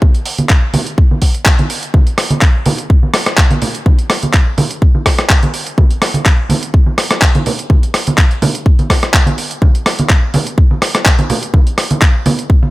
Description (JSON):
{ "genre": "house", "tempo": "125 BPM", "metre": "4/4", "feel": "swing 54% on 16ths", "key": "none", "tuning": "none", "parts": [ { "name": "electronic kick drum", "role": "drums", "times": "0.0-12.6 s", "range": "none", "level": "-10 LUFS", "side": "equal", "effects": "none" }, { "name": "egg shaker and congas", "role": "percussion", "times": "0.0-12.7 s", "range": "none", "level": "-17 LUFS", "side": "right 2 dB", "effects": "sidechain pumping on perc, low-pass filter on perc" }, { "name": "dusty soul sampler-style drum kit", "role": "drums", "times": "0.1-12.5 s", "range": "handclaps, hi-hat, rim click", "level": "-15 LUFS", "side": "equal", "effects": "overdrive, sidechain pumping on hats" } ], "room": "digital ambience", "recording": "none", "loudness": "-10 LUFS", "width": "side -19 dB against mid", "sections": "0.0-12.7 A section", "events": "filter sweep on drum 0.0-12.7", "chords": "none", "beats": "| 0.02 0.50 0.98 1.46 | 1.94 2.42 2.90 3.38 | 3.86 4.34 4.82 5.30 | 5.78 6.26 6.74 7.22 | 7.70 8.18 8.66 9.14 | 9.62 10.10 10.58 11.06 | 11.54 12.02 12.50" }